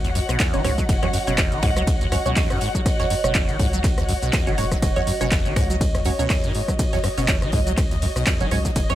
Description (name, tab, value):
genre	acid house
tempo	122 BPM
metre	4/4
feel	swing 56% on 16ths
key	unclear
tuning	A4 = 440 Hz
part	warbly tape-like pad	sustained chords	0.0-8.9 s	D#5	-31 LUFS	right 4 dB	chorus, built-in reverb, sidechain pumping
part	acid bass, saw	riff	0.0-8.9 s	E2 to F#3	-26 LUFS	equal	wide subtle chorus, sidechain pumping, tape echo
part	filtered dub chord stab	stabs	0.0-8.9 s	F#3 to C#5	-28 LUFS	right 3 dB	phaser, tape echo
part	round analog bass	bass	0.0-8.9 s	E1 to F#2	-27 LUFS	equal	sidechain pumping
part	electro analog drum machine	drums	0.0-8.9 s	finger snaps, handclaps, hi-hat, ride cymbal, rim click, shaker	-27 LUFS	equal	none
part	modern studio drum kit	drums	0.0-8.9 s	hi-hat, snare drum	-39 LUFS	right 3 dB	none
part	dark studio string section	texture	0.0-8.9 s	F#4 to F#5	-30 LUFS	left 3 dB	sidechain pumping
part	electronic kick drum	drums	0.4-8.9 s	none	-22 LUFS	equal	none
room	small room ambience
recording	none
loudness	-18 LUFS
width	side -13 dB against mid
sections	0.0-8.9 A section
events	none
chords	0.0 F#5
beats	0.40 | 0.89 1.38 1.87 2.37 | 2.86 3.35 3.84 4.33 | 4.83 5.32 5.81 6.30 | 6.79 7.28 7.78 8.27 | 8.76